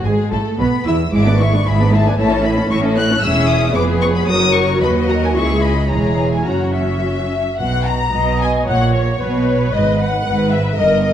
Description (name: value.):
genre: quick classical-period movement for string orchestra.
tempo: 113 BPM.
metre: 2/4.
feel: rubato.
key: A major, B major from 3.2 s.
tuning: A4 = 441 Hz.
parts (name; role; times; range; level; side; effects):
warm studio violin section; melody; 0.0-11.1 s; C#5 to F#6; -21 LUFS; left 4 dB; none.
warm studio violin section; second line; 0.0-11.1 s; F#4 to A#5; -22 LUFS; left 3 dB; none.
rich studio cello section; bass; 0.0-11.1 s; C#2 to E3; -20 LUFS; right 2 dB; none.
rich studio double bass section; bass; 0.0-11.1 s; E1 to E2; -20 LUFS; right 2 dB; none.
dark studio viola section; accompaniment; 0.1-11.1 s; F#3 to D#5; -20 LUFS; equal; none.
room: wet recital hall reverb, RT60 1.6 s.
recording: dark, warm production.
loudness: -13 LUFS.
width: side -10 dB against mid.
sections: 0.0-7.6 A section; 7.6-11.1 B section.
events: none.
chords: 0.1 Eadd11; 1.1 E7/G#; 2.2 A; 3.2 C#m/E; 3.7 Fdim; 4.3 F#; 4.8 B/D#; 5.4 C#m; 5.9 C#m/E; 6.5 F#5; 7.6 B; 8.7 F#/A#; 9.2 Bsus2; 9.7 G#m.